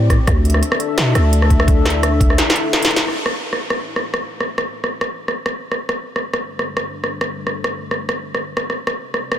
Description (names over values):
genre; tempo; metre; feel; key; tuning
half-time drum and bass; 171 BPM; 4/4; swing 54% on 16ths, half-time; A minor; A4 = 440 Hz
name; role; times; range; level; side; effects
dark analog pad; sustained chords; 0.0-9.4 s; G3 to E5; -25 LUFS; left 3 dB; chorus, sidechain pumping
growling 808-style bass; bass; 0.0-2.4 s; D2 to B2; -16 LUFS; equal; none
electronic kick drum; drums; 0.1-2.3 s; none; -15 LUFS; equal; none
industrial drum kit; drums; 0.1-9.4 s; hi-hat, rim click, snare drum; -19 LUFS; equal; none
room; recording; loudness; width
light reverb; dense, heavily limited modern master; -16 LUFS; side -10 dB against mid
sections
0.0-3.1 A section; 3.1-9.4 B section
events
drop 0.0-3.1; drum fill 2.4-3.1; band accent 3.0; filter sweep on analog synth pad 3.1-9.4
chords
0.3 Dsus2; 3.1 A5; 5.9 G5; 8.7 C5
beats
| 0.28 0.63 0.98 1.33 | 1.68 2.03 2.38 2.73 | 3.08 3.43 3.79 4.14 | 4.49 4.84 5.19 5.54 | 5.89 6.24 6.59 6.94 | 7.29 7.64 8.00 8.35 | 8.70 9.05